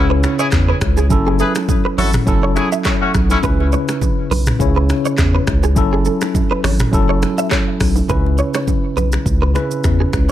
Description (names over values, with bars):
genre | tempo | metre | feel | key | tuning
afrobeats | 103 BPM | 4/4 | swing 55% on 16ths | C# minor | A4 = 440 Hz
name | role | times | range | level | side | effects
clear horn section | second line | 0.0-3.4 s | A3 to B4 | -22 LUFS | left 2 dB | tape echo
mellow tine electric piano | accompaniment | 0.0-10.3 s | C#3 to C#5 | -19 LUFS | left 1 dB | slow stereo tremolo
saturated sub bass | bass | 0.0-10.3 s | F#1 to E2 | -17 LUFS | equal | none
direct-recorded clean electric guitar | riff | 0.1-10.1 s | G#4 to E5 | -24 LUFS | right 5 dB | ensemble chorus, tape echo
afro-pop drum kit | drums | 0.2-10.3 s | finger snaps, handclaps, hi-hat, kick drum, rim click, shaker, toms | -19 LUFS | equal | none
bongos and congas | percussion | 0.2-10.3 s | none | -28 LUFS | right 8 dB | none
room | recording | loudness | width
digital ambience | dark, warm production | -13 LUFS | side -12 dB against mid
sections
0.0-8.1 A section; 8.1-10.3 B section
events
none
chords
0.0 C#m7; 1.1 F#m7; 3.4 C#m7; 5.8 F#m7; 8.1 C#m7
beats
0.52 | 1.10 1.69 2.27 2.85 | 3.44 4.02 4.60 5.18 | 5.76 6.35 6.93 7.51 | 8.10 8.68 9.26 9.84